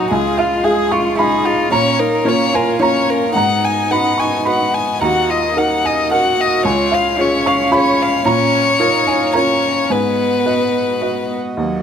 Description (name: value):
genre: neoclassical piano and strings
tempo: 110 BPM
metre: 3/4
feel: rubato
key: G# dorian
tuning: A4 = 440 Hz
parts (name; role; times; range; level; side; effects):
- warm violin; melody; 0.0-11.4 s; D#4 to G#5; -17 LUFS; left 6 dB; none
- warm cello; second line; 0.0-11.8 s; F#3 to G#4; -21 LUFS; right 4 dB; none
- clear upright piano; accompaniment; 0.0-11.8 s; C#2 to C#6; -18 LUFS; right 2 dB; none
- hand-pumped harmonium; sustained chords; 0.0-11.8 s; G#3 to E#5; -24 LUFS; right 1 dB; none
room: light reverb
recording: none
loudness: -13 LUFS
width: side -8 dB against mid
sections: 0.0-11.6 A section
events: none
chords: 0.1 C#; 1.7 A#m; 3.4 G#m7; 5.0 D#m; 6.6 C#; 8.3 A#m; 9.9 G#m7